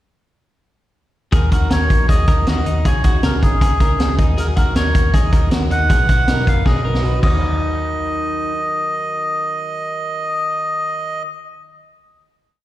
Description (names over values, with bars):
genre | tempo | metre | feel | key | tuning
jangly indie pop | 158 BPM | 4/4 | straight | Eb minor | A4 = 440 Hz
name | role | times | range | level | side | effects
melodica | melody | 1.3-11.2 s | Ab4 to Gb5 | -21 LUFS | right 1 dB | slapback echo
picked plugged-in steel-string acoustic guitar | accompaniment | 1.3-11.3 s | B2 to B4 | -28 LUFS | right 6 dB | slapback echo
twelve-string electric guitar | arpeggios | 1.3-8.5 s | Eb4 to Bb4 | -27 LUFS | left 5 dB | slapback echo
vintage muted picked electric bass | bass | 1.3-11.2 s | F#1 to Eb2 | -19 LUFS | equal | none
vintage drum kit | drums | 1.3-7.3 s | crash cymbal, hi-hat, kick drum, snare drum | -17 LUFS | equal | none
room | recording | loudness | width
little or no reverb | live gig heard through the venue's PA, recital hall reverb | -15 LUFS | side -14 dB against mid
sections
1.3-7.4 verse; 7.4-10.5 final hit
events
drum fill 6.7-7.4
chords
1.3 Ebm; 2.9 Dbsus2; 4.2 Ebm; 5.9 B; 7.2 Ebm